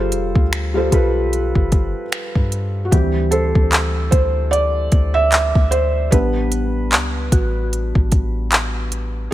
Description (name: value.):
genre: contemporary R&B.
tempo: 75 BPM.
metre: 4/4.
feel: swing 58% on 16ths.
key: unclear.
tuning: A4 = 438 Hz.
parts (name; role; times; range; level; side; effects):
felt-muted upright piano; accompaniment; 0.0-9.3 s; E3 to F5; -20 LUFS; right 1 dB; none.
soft 808-style bass; bass; 0.0-9.3 s; F1 to G2; -21 LUFS; equal; none.
smooth R&B drum kit; drums; 0.1-9.1 s; finger snaps, handclaps, hi-hat, kick drum; -17 LUFS; equal; none.
soft synth bell; texture; 3.3-9.3 s; F#4 to C5; -30 LUFS; left 1 dB; chorus, ping-pong delay.
room: little or no reverb.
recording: none.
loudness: -15 LUFS.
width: side -14 dB against mid.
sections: 0.0-2.9 A section; 2.9-9.3 B section.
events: felt piano solo 2.9-9.3.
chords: 0.0 G9sus4; 2.9 D9sus4; 6.1 A9sus4.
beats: 0.52 1.32 2.12 | 2.92 3.72 4.52 5.32 | 6.12 6.92 7.72 8.52 | 9.32.